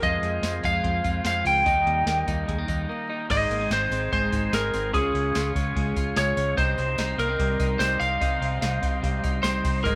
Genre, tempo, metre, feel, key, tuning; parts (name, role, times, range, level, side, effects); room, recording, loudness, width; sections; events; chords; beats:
jangly indie pop; 146 BPM; 4/4; straight; A4 = 440 Hz
lightly driven lead guitar; melody; 0.0-10.0 s; Ab4 to G5; -27 LUFS; equal
combo organ; accompaniment; 0.0-10.0 s; C4 to G5; -36 LUFS; equal
crunchy overdriven guitar; accompaniment; 0.0-10.0 s; Ab2 to F4; -39 LUFS; equal
twelve-string electric guitar; arpeggios; 0.0-10.0 s; Ab2 to F4; -33 LUFS; equal
vintage muted fingered electric bass; bass; 0.0-10.0 s; Ab1 to F2; -32 LUFS; equal
soft vintage rhythm box; drums; 0.0-9.9 s; crash cymbal, hi-hat, kick drum, snare drum; -33 LUFS; equal
tambourine; percussion; 0.0-9.9 s; -46 LUFS; equal
wet small room reverb, RT60 0.5 s; rough home demo mix, vinyl crackle; -25 LUFS; mono
0.0-3.3 A section; 3.3-10.0 B section
transistor combo organ fill 2.7-3.3; break 2.9-3.3
0.0 Fm; 1.7 Eb; 3.3 Ab; 4.9 Db; 6.6 Cm
| 0.02 0.43 0.84 1.25 | 1.66 2.07 2.48 2.89 | 3.30 3.71 4.12 4.53 | 4.94 5.35 5.76 6.17 | 6.58 6.99 7.40 7.81 | 8.21 8.62 9.03 9.44 | 9.85